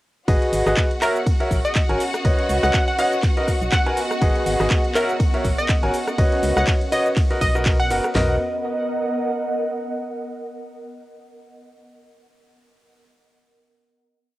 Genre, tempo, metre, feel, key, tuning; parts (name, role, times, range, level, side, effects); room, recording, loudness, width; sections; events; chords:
piano house; 122 BPM; 4/4; swing 56% on 16ths; B major; A4 = 439 Hz
clear studio string section; sustained chords; 0.3-8.2 s; F#4 to F#5; -30 LUFS; equal; sidechain pumping, cassette tape
bright grand piano; riff; 0.3-8.3 s; F#4 to G#5; -23 LUFS; equal; sidechain pumping, cassette tape, tape echo
organ-like FM bass; bass; 0.3-8.4 s; F#1 to C#2; -24 LUFS; equal; sidechain pumping
house drum kit; drums; 0.3-8.3 s; hi-hat, kick drum, snare drum, toms; -20 LUFS; equal; cassette tape
house drum kit; drums; 0.3-8.1 s; cabasa, handclaps, hi-hat, ride cymbal, rim click; -29 LUFS; equal; cassette tape
ethereal airy pad; texture; 1.0-10.1 s; B3 to F#5; -28 LUFS; right 1 dB; ensemble chorus, built-in reverb, sidechain pumping, cassette tape
glassy wavetable pluck; melody; 1.0-8.2 s; A#4 to F#5; -25 LUFS; equal; chorus, cassette tape, tape echo
moderate booth ambience, RT60 0.2 s; home recording on cassette; -18 LUFS; side -17 dB against mid
0.3-8.2 drop; 8.2-10.1 final chord
drop 0.3-8.2
0.3 G#m7; 1.0 F#7; 2.0 C#9sus4; 3.2 Bmaj7; 4.2 G#m7; 5.0 F#7; 5.9 C#9sus4; 7.2 Bmaj7